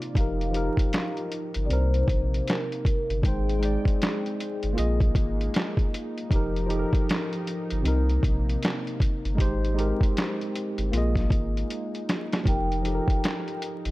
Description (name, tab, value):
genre	lo-fi hip hop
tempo	78 BPM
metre	4/4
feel	swing 62% on 16ths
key	unclear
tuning	A4 = 439 Hz
part	mellow tine electric piano	accompaniment	0.0-13.9 s	C3 to G5	-30 LUFS	equal	medium stereo tremolo, low-pass filter
part	lush unison pad	sustained chords	0.0-13.9 s	C3 to G5	-38 LUFS	equal	chorus, low-pass filter
part	lo-fi sampler-style drum kit	drums	0.0-13.9 s	handclaps, hi-hat, kick drum, snare drum	-26 LUFS	equal	none
part	vibraphone with soft mallets	melody	0.2-5.9, 12.5-13.6 s	Ab4 to G5	-33 LUFS	left 2 dB	low-pass filter
part	sub bass with octave	bass	0.2-13.9 s	F1 to C2	-26 LUFS	equal	none
room	digital ambience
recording	dry, gritty hardware recording, vinyl crackle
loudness	-23 LUFS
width	side -19 dB against mid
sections	0.2-13.9 A section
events	drum fill 11.7-12.5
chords	0.2 F9sus4; 1.7 Cm7; 3.2 Abmaj7; 4.8 Bb7sus4; 6.3 F9sus4; 7.8 Cm7; 9.4 Abmaj7; 10.9 Bb7sus4; 12.5 F9sus4